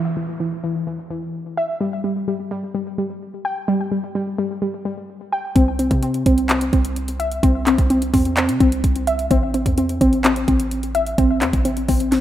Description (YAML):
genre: hip hop, trap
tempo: 128 BPM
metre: 4/4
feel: half-time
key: unclear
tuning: A4 = 441 Hz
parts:
  - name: warbly dusty pluck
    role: arpeggios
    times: 0.0-12.2 s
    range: E3 to G5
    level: -20 LUFS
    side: left 1 dB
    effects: chorus, ping-pong delay
  - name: downlifter and reverse cymbal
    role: sound effects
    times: 0.0-1.8, 12.1-12.2 s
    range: none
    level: -43 LUFS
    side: equal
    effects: none
  - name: warm 808-style bass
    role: bass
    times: 5.6-12.2 s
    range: A1 to C3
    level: -24 LUFS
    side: right 1 dB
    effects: none
  - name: trap drum kit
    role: drums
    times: 5.6-12.2 s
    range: handclaps, hi-hat, kick drum, snare drum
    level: -20 LUFS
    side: equal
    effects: none
room: light reverb, digital ambience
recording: rough home demo mix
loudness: -17 LUFS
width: side -12 dB against mid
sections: 0.0-12.2 A section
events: none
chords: 0.0 N.C.; 5.6 C; 9.3 Am